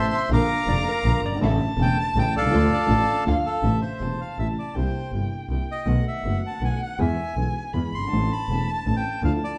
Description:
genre	tango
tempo	161 BPM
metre	3/4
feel	rubato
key	D minor, A minor from 3.6 s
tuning	A4 = 442 Hz
part	bandoneon	melody	0.0-9.6 s	A4 to D6	-29 LUFS	equal	none
part	dark violin	second line	0.0-9.6 s	E5 to C6	-34 LUFS	equal	none
part	warm upright piano	accompaniment	0.0-9.4 s	E1 to A4	-29 LUFS	equal	none
part	dark studio string section	stabs	0.0-3.4 s	C4 to Bb4	-37 LUFS	equal	none
part	bright double bass	bass	0.0-9.4 s	E1 to E2	-27 LUFS	equal	none
part	vintage hollow-body jazz guitar	second line	0.7-3.6 s	Bb4 to F5	-34 LUFS	equal	none
room	moderate large studio reverb, RT60 1.3 s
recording	dark, warm production, nothing above 10.6 kHz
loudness	-24 LUFS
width	mono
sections	0.0-3.6 A section; 3.6-9.6 B section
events	none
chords	0.3 Bb; 1.4 A; 2.5 Dm; 3.6 Am; 4.8 C7; 5.9 B7; 7.0 E; 8.1 Am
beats	| 0.32 0.69 1.06 | 1.42 1.79 2.16 | 2.53 2.90 3.27 | 3.64 4.02 4.39 | 4.76 5.14 5.51 | 5.88 6.25 6.62 | 7.00 7.37 7.74 | 8.12 8.49 8.86 | 9.23

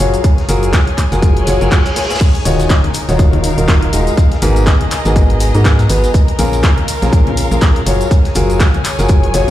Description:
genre	piano house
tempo	122 BPM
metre	4/4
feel	swing 58% on 16ths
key	unclear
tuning	A4 = 440 Hz
part	warm upright piano	riff	0.0-9.5 s	Ab2 to Eb5	-17 LUFS	left 1 dB	sidechain pumping, ping-pong delay
part	organ-like FM bass	bass	0.0-9.5 s	Eb1 to Ab2	-15 LUFS	equal	sidechain pumping
part	punchy analog drum machine	drums	0.0-9.5 s	crash cymbal, handclaps, hi-hat, shaker	-22 LUFS	left 1 dB	none
part	muted chamber string section	texture	0.0-9.5 s	Eb4 to Bb5	-22 LUFS	left 1 dB	sidechain pumping
part	electronic kick drum	drums	0.2-9.2 s	none	-12 LUFS	equal	overdrive
part	vintage drum kit	drums	0.2-9.5 s	hi-hat, shaker, snare drum	-29 LUFS	equal	none
part	reverse cymbal	sound effects	1.4-2.2 s	none	-24 LUFS	right 2 dB	none
part	tambourine and congas	percussion	2.2-9.5 s	none	-26 LUFS	left 6 dB	none
room	little or no reverb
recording	played on a big sound system in a bare room, large studio reverb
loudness	-10 LUFS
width	side -13 dB against mid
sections	0.0-9.5 A section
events	reverse cymbal 1.4-2.2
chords	0.0 Gbmaj9; 2.2 Ebm9; 4.2 Abm9; 6.1 Bbm7; 7.9 Gbmaj9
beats	| 0.24 0.73 1.22 1.72 | 2.21 2.70 3.19 3.68 | 4.17 4.67 5.16 5.65 | 6.14 6.63 7.13 7.62 | 8.11 8.60 9.09

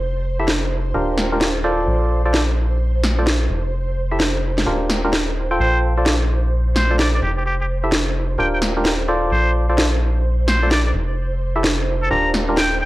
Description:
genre	UK garage, two-step garage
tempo	129 BPM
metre	4/4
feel	swing 64% on 16ths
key	Bb major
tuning	A4 = 439 Hz
part	ethereal airy pad	sustained chords	0.0-12.9 s	C5	-30 LUFS	right 4 dB	ensemble chorus, built-in reverb
part	rubbery square bass	bass	0.0-12.9 s	Eb1 to Bb1	-20 LUFS	equal	none
part	percussive organ stab	stabs	0.4-12.6 s	D4 to G5	-22 LUFS	equal	chorus, analog delay
part	electronic snare drum	drums	0.5-12.7 s	none	-21 LUFS	equal	none
part	trumpet with straight mute	melody	5.6-12.9 s	G4 to Bb5	-22 LUFS	equal	vintage 12-bit sampler grit, analog delay
room	digital ambience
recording	dry, gritty hardware recording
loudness	-16 LUFS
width	side -17 dB against mid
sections	0.0-12.9 A section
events	none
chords	0.0 Fmaj9; 0.9 Ebmaj9; 1.9 Bbmaj9; 3.5 Fmaj9; 4.7 Ebmaj9; 5.6 Bbmaj9; 7.2 Fmaj9; 8.4 Ebmaj9; 9.3 Bbmaj9; 10.9 Fmaj9; 12.1 Ebmaj9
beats	| 0.01 0.48 0.94 1.41 | 1.87 2.34 2.80 3.27 | 3.73 4.20 4.66 5.13 | 5.59 6.06 6.53 6.99 | 7.46 7.92 8.38 8.85 | 9.32 9.78 10.25 10.71 | 11.18 11.64 12.11 12.57

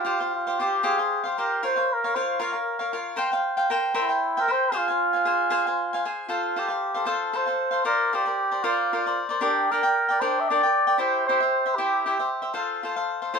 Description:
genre	mexican folk, mariachi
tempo	77 BPM (dotted quarters)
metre	6/8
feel	straight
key	F minor, F major from 6.3 s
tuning	A4 = 440 Hz
part	trumpet with cup mute	melody	0.0-13.4 s	E4 to E5	-24 LUFS	right 1 dB	none
part	cavaquinho	accompaniment	0.0-13.4 s	D4 to Ab5	-25 LUFS	left 1 dB	none
room	light reverb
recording	minimal, uncompressed stereo recording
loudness	-22 LUFS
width	side -5 dB against mid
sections	0.0-6.3 A section; 6.3-13.4 B section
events	none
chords	0.1 Csus4; 1.6 Bbm; 3.2 C7sus4; 3.9 C7; 4.7 Fm; 6.3 F; 7.8 Bbadd9; 9.4 Gm; 11.0 C; 12.5 F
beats	| 0.07 0.85 | 1.63 2.40 | 3.17 3.95 | 4.73 5.51 | 6.29 7.07 | 7.85 8.62 | 9.40 10.18 | 10.96 11.75 | 12.54 13.32

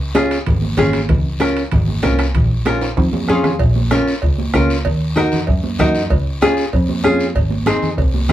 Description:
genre	latin, cumbia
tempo	192 BPM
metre	4/4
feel	straight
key	Bb minor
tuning	A4 = 440 Hz
part	rich double bass	bass	0.0-8.3 s	Ab1 to Gb2	-19 LUFS	equal	none
part	nylon-string guitar	accompaniment	0.1-8.3 s	C4 to F5	-16 LUFS	left 1 dB	none
part	congas	percussion	0.1-8.3 s	none	-22 LUFS	right 2 dB	none
part	bombo	percussion	0.2-8.3 s	none	-21 LUFS	equal	none
part	guiro	percussion	0.2-8.3 s	none	-31 LUFS	left 3 dB	none
part	timbales and cowbell	percussion	0.2-8.1 s	none	-27 LUFS	right 5 dB	none
room	wet small room ambience, RT60 0.5 s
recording	heard from further back in the room, vinyl crackle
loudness	-14 LUFS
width	side -12 dB against mid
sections	0.0-3.6 A section; 3.6-8.3 B section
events	drum fill 2.8-3.6; nylon-string guitar fill 3.1-3.6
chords	0.0 Db; 2.3 Bbm; 4.9 Ebm; 6.1 Db; 7.4 Ab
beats	0.16 0.47 0.78 | 1.10 1.41 1.72 2.04 | 2.35 2.66 2.97 3.29 | 3.60 3.91 4.22 4.54 | 4.85 5.16 5.48 5.79 | 6.10 6.42 6.73 7.04 | 7.35 7.67 7.98 8.29

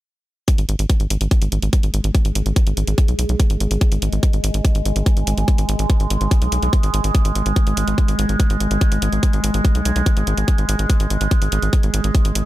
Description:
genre	psychedelic trance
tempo	144 BPM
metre	4/4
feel	straight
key	G# minor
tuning	A4 = 440 Hz
part	overtone-sweeping drone	sustained chords	1.2-12.5 s	G#3	-24 LUFS	right 1 dB	chorus, built-in reverb, sidechain pumping
part	electronic hi-hat	drums	0.5-12.4 s	none	-27 LUFS	right 1 dB	none
part	electronic kick drum	drums	0.5-12.2 s	none	-15 LUFS	equal	none
part	tight sequencer bass	bass	0.6-12.4 s	G#1 to B1	-19 LUFS	equal	none
room	little or no reverb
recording	none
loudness	-16 LUFS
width	side -16 dB against mid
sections	0.5-12.5 A section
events	none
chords	none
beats	| 0.48 0.90 1.31 1.73 | 2.15 2.56 2.98 3.40 | 3.81 4.23 4.65 5.06 | 5.48 5.90 6.31 6.73 | 7.15 7.56 7.98 8.40 | 8.81 9.23 9.65 10.06 | 10.48 10.90 11.31 11.73 | 12.15

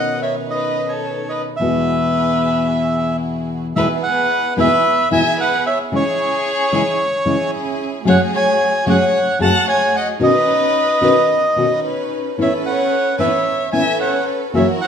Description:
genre	tango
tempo	112 BPM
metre	4/4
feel	rubato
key	E major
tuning	A4 = 438 Hz
part	bandoneon	melody	0.0-14.9 s	C#5 to A5	-18 LUFS	right 1 dB	none
part	warm violin	second line	0.0-14.9 s	G#4 to F#5	-21 LUFS	left 2 dB	none
part	nylon-string guitar	accompaniment	0.0-14.6 s	E2 to G#4	-20 LUFS	left 2 dB	none
part	dark studio string section	stabs	0.0-14.9 s	A3 to B4	-24 LUFS	right 2 dB	none
room	wet large studio reverb, RT60 1.4 s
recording	minimal, uncompressed stereo recording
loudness	-14 LUFS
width	side -7 dB against mid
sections	0.0-3.8 A section; 3.8-14.9 B section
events	none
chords	0.0 Badd9; 1.6 Eadd9; 3.8 E; 5.9 C#m; 8.1 F#madd9; 10.2 Badd9; 12.4 Aadd9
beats	0.52 1.05 | 1.59 2.13 2.67 3.22 | 3.77 4.31 4.85 5.39 | 5.92 6.46 7.00 7.53 | 8.07 8.60 9.14 9.68 | 10.21 10.75 11.29 11.83 | 12.37 12.92 13.46 14.00 | 14.54

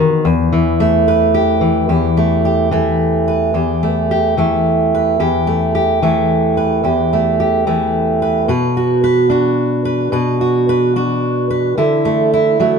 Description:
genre	folk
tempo	109 BPM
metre	3/4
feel	straight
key	E minor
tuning	A4 = 439 Hz
part	fingerpicked steel-string acoustic guitar	solo	0.0-12.8 s	E2 to B4	-12 LUFS	equal	none
room	moderate stone room reverb, RT60 1.2 s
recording	band playing live in one room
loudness	-12 LUFS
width	side -5 dB against mid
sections	0.0-1.9 A section; 1.9-12.8 B section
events	none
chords	0.3 Em; 8.5 Bm; 11.8 Dadd9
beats	| 0.26 0.80 1.35 | 1.90 2.45 3.00 | 3.55 4.10 4.65 | 5.20 5.74 6.29 | 6.84 7.39 7.94 | 8.49 9.04 9.58 | 10.13 10.68 11.23 | 11.77 12.32

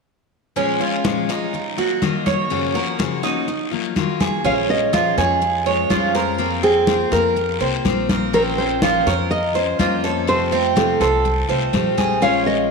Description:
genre	latin, Cuban son and guajira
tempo	123 BPM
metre	4/4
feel	straight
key	Bb minor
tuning	A4 = 438 Hz
part	picked steel-string acoustic guitar	accompaniment	0.6-12.7 s	Gb2 to C5	-23 LUFS	left 10 dB	none
part	Cuban tres	arpeggios	0.6-12.7 s	C4 to Eb5	-21 LUFS	right 7 dB	none
part	congas	percussion	0.6-12.7 s	none	-25 LUFS	left 1 dB	none
part	guiro	percussion	0.6-12.7 s	none	-32 LUFS	left 10 dB	none
part	upright bass	bass	4.4-12.7 s	Bb1 to F2	-26 LUFS	equal	none
part	nylon-string guitar	melody	4.5-12.7 s	Ab4 to F5	-21 LUFS	equal	none
room	wet echo chamber reverb, RT60 2.5 s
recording	1960s-style stereo with parts hard left and right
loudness	-16 LUFS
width	side -4 dB against mid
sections	0.6-4.4 A section; 4.4-12.7 B section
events	none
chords	0.6 Bbm7; 1.5 Ebmadd9; 2.5 Gbmaj7; 3.5 Ebmadd9; 4.4 Bbm7; 6.4 Fsus4; 8.3 Bbmadd9; 10.3 F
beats	| 0.56 1.05 1.53 2.02 | 2.50 2.99 3.48 3.96 | 4.45 4.93 5.42 5.91 | 6.39 6.88 7.37 7.85 | 8.34 8.82 9.31 9.79 | 10.28 10.77 11.25 11.74 | 12.22

